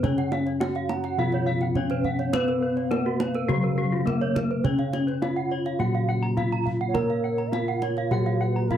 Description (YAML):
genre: Balinese gamelan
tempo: 104 BPM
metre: 4/4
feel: straight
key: Bb pelog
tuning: A4 = 440 Hz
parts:
  - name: gamelan-type bronze metallophone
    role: melody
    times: 0.0-8.8 s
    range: Gb3 to Bb4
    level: -29 LUFS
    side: left 2 dB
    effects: none
  - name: gamelan-type bronze metallophone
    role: accompaniment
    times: 0.0-8.8 s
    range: Db3 to Cb4+35c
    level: -33 LUFS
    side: right 4 dB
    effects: none
  - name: gamelan-type bronze metallophone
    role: arpeggios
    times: 0.0-8.8 s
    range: F4 to Bb5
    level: -32 LUFS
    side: left 6 dB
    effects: none
  - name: gamelan-type bronze metallophone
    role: arpeggios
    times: 0.0-8.4 s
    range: Gb4 to Bb5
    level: -32 LUFS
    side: right 9 dB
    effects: none
  - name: gamelan-type bossed gongs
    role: bass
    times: 0.0-8.8 s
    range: Bb2 to Cb5+35c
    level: -27 LUFS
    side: left 1 dB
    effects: none
  - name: kendang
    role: percussion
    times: 0.0-8.8 s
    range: none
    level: -31 LUFS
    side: right 4 dB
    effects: none
  - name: hollow bass bansuri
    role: second line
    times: 0.9-8.8 s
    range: Bb4 to Gb5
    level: -35 LUFS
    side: right 16 dB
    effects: none
room: light reverb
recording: dry, close 1970s-style studio recording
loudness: -23 LUFS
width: side -10 dB against mid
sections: 0.0-8.8 A section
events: none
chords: none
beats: | 0.03 0.61 1.19 1.76 | 2.34 2.91 3.49 4.07 | 4.64 5.22 5.79 6.37 | 6.95 7.53 8.11 8.71